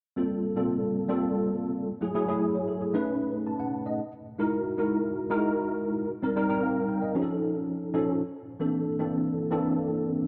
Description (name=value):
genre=pop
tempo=114 BPM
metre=4/4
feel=straight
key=unclear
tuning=A4 = 440 Hz
part: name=mellow tine electric piano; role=accompaniment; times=0.2-10.3 s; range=E3 to A5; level=-28 LUFS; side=equal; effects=ensemble chorus
room=moderate lush hall reverb, RT60 2.8 s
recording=none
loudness=-29 LUFS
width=mono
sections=0.0-10.3 A section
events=none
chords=0.0 Gm11; 1.9 F#m9; 2.9 B9; 4.0 Emaj9#11; 6.1 Cm7; 7.1 Faug7; 8.2 Bbmaj9#11